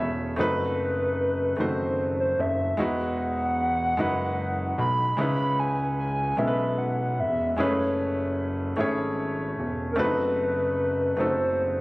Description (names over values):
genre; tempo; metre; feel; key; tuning
slow six-eight R&B; 50 BPM (dotted quarters); 6/8; straight; unclear; A4 = 440 Hz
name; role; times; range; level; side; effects
warm concert grand piano; accompaniment; 0.0-11.8 s; D#3 to B5; -28 LUFS; equal; none
fat analog bass; bass; 0.0-11.8 s; E1 to C#2; -29 LUFS; equal; none
hollow clarinet-like synth lead; melody; 0.4-11.8 s; A#4 to B5; -27 LUFS; equal; chorus
room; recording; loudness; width
light reverb, small room ambience; recorded on a phone in the room, club reverb, compression; -23 LUFS; side -21 dB against mid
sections
0.0-11.8 A section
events
grand piano fill 0.0-0.4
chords
0.4 B7b9/F#; 2.8 Emaj9; 5.2 C#m7; 7.6 F#m11; 10.0 B7b9/F#